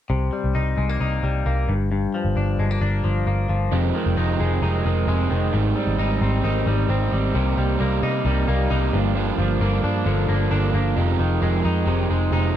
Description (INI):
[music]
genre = indie pop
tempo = 132 BPM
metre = 4/4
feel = straight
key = C minor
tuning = A4 = 440 Hz
[part]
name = direct-recorded clean electric guitar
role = arpeggios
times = 0.1-12.6 s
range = F2 to Eb4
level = -25 LUFS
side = left 4 dB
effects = wide subtle chorus, slapback echo
[part]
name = vintage muted picked electric bass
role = bass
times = 0.1-12.6 s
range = F1 to C3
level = -22 LUFS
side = equal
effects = none
[part]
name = crunchy overdriven guitar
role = accompaniment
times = 3.7-12.6 s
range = F2 to Eb4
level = -24 LUFS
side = right 8 dB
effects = none
[sound]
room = light reverb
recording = dark, warm production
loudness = -19 LUFS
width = side -10 dB against mid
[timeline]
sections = 0.1-7.3 A section; 7.3-12.6 B section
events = none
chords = 0.1 Cm7; 1.7 Gm7; 3.7 Fm7; 5.5 Abmaj7; 7.3 Cm7; 8.9 Gm7; 11.0 Fm7